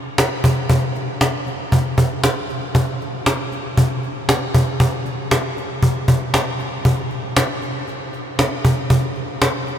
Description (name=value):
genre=pop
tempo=117 BPM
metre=4/4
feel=straight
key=none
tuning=none
part: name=cajon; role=drums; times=0.2-9.7 s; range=none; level=-17 LUFS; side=equal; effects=none
room=wet huge ambient reverb, RT60 7.7 s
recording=dreamy mix soaked in reverb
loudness=-17 LUFS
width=side -9 dB against mid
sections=0.0-9.8 A section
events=none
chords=none